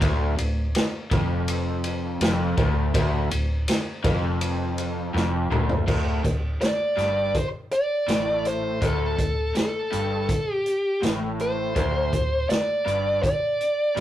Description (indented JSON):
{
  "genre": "blues rock power trio and southern rock",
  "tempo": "82 BPM",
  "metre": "4/4",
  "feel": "straight",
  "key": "D minor",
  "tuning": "A4 = 440 Hz",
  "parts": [
    { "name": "crunchy overdriven guitar", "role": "riff", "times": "0.0-14.0 s", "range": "D2 to A2", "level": "-28 LUFS", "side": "left 1 dB", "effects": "none" },
    { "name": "vintage muted fingered electric bass", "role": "bass", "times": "0.0-14.0 s", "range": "D1 to A1", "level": "-27 LUFS", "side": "equal", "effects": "none" },
    { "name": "vintage drum kit", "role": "drums", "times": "0.0-14.0 s", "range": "crash cymbal, hi-hat, kick drum, ride cymbal, snare drum, toms", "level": "-26 LUFS", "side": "equal", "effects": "none" },
    { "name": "bluesy overdriven lead guitar", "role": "melody", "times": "6.6-14.0 s", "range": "A4 to D5", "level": "-24 LUFS", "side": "equal", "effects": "distortion" }
  ],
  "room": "moderate studio reverb, RT60 0.5 s",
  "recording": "rough rehearsal-room recording, warm saturation",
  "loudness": "-22 LUFS",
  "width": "side -12 dB against mid",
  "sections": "0.0-5.9 A section; 5.9-14.0 B section",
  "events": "drum fill 5.1-5.9",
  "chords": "0.0 Dm; 5.9 D5",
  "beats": "| 0.01 0.75 1.48 2.21 | 2.95 3.68 4.42 5.15 | 5.88 6.62 7.35 8.09 | 8.82 9.55 10.29 11.02 | 11.76 12.49 13.23 13.96"
}